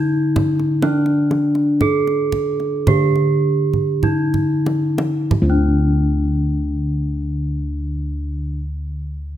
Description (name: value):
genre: Javanese gamelan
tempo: 45-68 BPM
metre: 4/4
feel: straight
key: unclear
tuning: A4 = 438 Hz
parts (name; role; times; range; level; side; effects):
- gamelan-type bronze metallophone; melody; 0.0-8.6 s; D4 to A4-40c; -20 LUFS; right 1 dB; none
- gamelan-type bossed gongs; bass; 0.0-8.5 s; D2 to E4-50c; -19 LUFS; equal; none
- kendang; percussion; 0.4-5.9 s; none; -23 LUFS; right 2 dB; none
room: light reverb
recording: close, detailed microphones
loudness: -16 LUFS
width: side -11 dB against mid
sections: 0.0-5.3 A section; 5.3-9.4 B section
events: slowing down 0.0-5.3; drum fill 3.7-5.3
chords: none